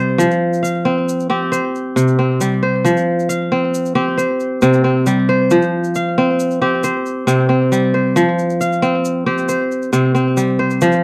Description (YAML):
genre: west african traditional, West African string and xylophone music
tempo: 90 BPM (dotted quarters)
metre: 12/8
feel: straight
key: unclear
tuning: A4 = 435 Hz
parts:
  - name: kora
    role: arpeggios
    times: 0.0-11.0 s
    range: C3 to F5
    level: -16 LUFS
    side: equal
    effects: slapback echo
  - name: tube shaker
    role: percussion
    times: 0.2-11.0 s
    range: none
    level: -34 LUFS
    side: equal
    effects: none
room: little or no reverb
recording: dry, close 1970s-style studio recording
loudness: -16 LUFS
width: mono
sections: 0.2-11.0 A section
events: none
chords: 0.2 F5; 1.5 C5; 2.9 F5; 4.2 C5; 5.5 F5; 6.8 C5; 8.2 F5; 9.5 C5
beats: | 0.19 0.86 1.52 2.19 | 2.85 3.52 4.18 4.84 | 5.51 6.17 6.84 7.50 | 8.16 8.83 9.49 10.15 | 10.82